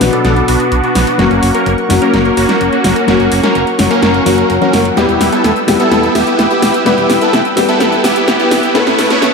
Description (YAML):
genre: EDM, festival progressive house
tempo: 127 BPM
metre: 4/4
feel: straight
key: unclear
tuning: A4 = 439 Hz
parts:
  - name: dark baby grand piano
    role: accompaniment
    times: 0.0-9.3 s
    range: A2 to B4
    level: -16 LUFS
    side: left 5 dB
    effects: digital delay
  - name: lush unison pad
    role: sustained chords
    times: 0.0-9.3 s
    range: A#4 to E6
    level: -19 LUFS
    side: equal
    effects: chorus
  - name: fat analog bass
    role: bass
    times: 0.0-9.3 s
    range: E1 to B1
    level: -19 LUFS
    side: equal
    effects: none
  - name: big-room dance drum kit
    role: drums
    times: 0.0-9.3 s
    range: hi-hat, shaker, snare drum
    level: -16 LUFS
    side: equal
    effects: none
  - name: supersaw chords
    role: riff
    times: 0.1-9.3 s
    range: A3 to C#5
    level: -13 LUFS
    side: right 1 dB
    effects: low-pass filter, digital delay
  - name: riser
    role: sound effects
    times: 6.6-9.3 s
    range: none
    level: barely audible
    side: none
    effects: none
room: wet lush hall reverb, RT60 1.8 s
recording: dark, warm production, high-pass filter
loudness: -9 LUFS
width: side -4 dB against mid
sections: 0.0-9.3 A section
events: build-up 0.0-9.3; drum fill 0.0-9.3; filter sweep on supersaw synth 0.0-9.3; filter sweep 0.0-9.3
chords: 0.0 Bm; 1.2 F#; 5.0 Em; 8.8 Aadd9